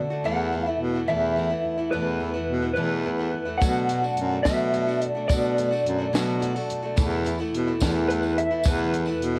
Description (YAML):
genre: indie folk with a building arrangement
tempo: 71 BPM (dotted quarters)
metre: 6/8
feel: straight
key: unclear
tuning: A4 = 440 Hz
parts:
  - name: fingerpicked steel-string acoustic guitar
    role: accompaniment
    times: 0.0-9.4 s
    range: E2 to A4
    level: -35 LUFS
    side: equal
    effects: cassette tape
  - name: picked old ladder-braced acoustic guitar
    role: accompaniment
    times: 0.0-9.4 s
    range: E2 to F#4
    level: -32 LUFS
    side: equal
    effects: cassette tape
  - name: warm baritone saxophone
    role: bass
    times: 0.0-9.4 s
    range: E2 to B2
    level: -30 LUFS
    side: equal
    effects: none
  - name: electric guitar through a small old amp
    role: melody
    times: 0.3-9.3 s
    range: B4 to F#5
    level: -29 LUFS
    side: equal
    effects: tremolo, cassette tape, analog delay
  - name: compact cocktail drum kit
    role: drums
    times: 3.6-9.3 s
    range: hi-hat, kick drum, snare drum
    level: -27 LUFS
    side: equal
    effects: cassette tape
  - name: tambourine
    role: percussion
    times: 3.6-9.1 s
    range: none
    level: -43 LUFS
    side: equal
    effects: none
room: little or no reverb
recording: home recording on cassette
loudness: -25 LUFS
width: mono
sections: 0.0-9.4 A section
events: none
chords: 0.2 Esus4; 3.6 Bm7; 7.0 Esus4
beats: | 0.24 1.09 | 1.93 2.77 | 3.61 4.45 | 5.29 6.13 | 6.97 7.81 | 8.65